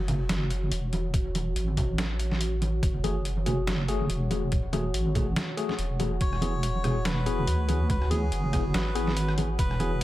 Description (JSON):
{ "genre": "deep dubstep", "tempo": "142 BPM", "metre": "4/4", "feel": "swing 56% on 16ths, half-time", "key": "F# minor", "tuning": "A4 = 440 Hz", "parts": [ { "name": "dark analog pad", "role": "sustained chords", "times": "0.0-10.0 s", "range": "F#4 to C#5", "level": "-37 LUFS", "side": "equal", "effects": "chorus, vintage 12-bit sampler grit" }, { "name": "deep soft wobble bass", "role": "bass", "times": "0.0-10.0 s", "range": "E1 to D2", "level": "-28 LUFS", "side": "equal", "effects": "chorus, tube saturation" }, { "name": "trip hop sampler-style drum kit", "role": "drums", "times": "0.1-10.0 s", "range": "hi-hat, rim click, snare drum", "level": "-34 LUFS", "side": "equal", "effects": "none" }, { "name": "congas", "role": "percussion", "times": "0.1-9.9 s", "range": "none", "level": "-34 LUFS", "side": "right 2 dB", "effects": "dub echo" }, { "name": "electronic kick drum", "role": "drums", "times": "1.1-9.7 s", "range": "none", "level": "-28 LUFS", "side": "equal", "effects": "none" }, { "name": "tine electric piano", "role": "stabs", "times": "3.0-9.9 s", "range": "A3 to G#4", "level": "-33 LUFS", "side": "left 4 dB", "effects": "medium stereo tremolo, low-pass filter, dub echo" }, { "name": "melodica", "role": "melody", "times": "6.2-10.0 s", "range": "G#4 to C#5", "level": "-34 LUFS", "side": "left 1 dB", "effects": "dub echo" } ], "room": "light reverb", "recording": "echo-heavy mix", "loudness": "-25 LUFS", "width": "side -15 dB against mid", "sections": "0.0-10.0 A section", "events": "none", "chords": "0.0 F#madd9; 6.2 E", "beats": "0.29 0.72 | 1.14 1.56 1.98 2.41 | 2.83 3.25 3.67 4.10 | 4.52 4.94 5.36 5.79 | 6.21 6.63 7.05 7.48 | 7.90 8.32 8.74 9.17 | 9.59 10.01" }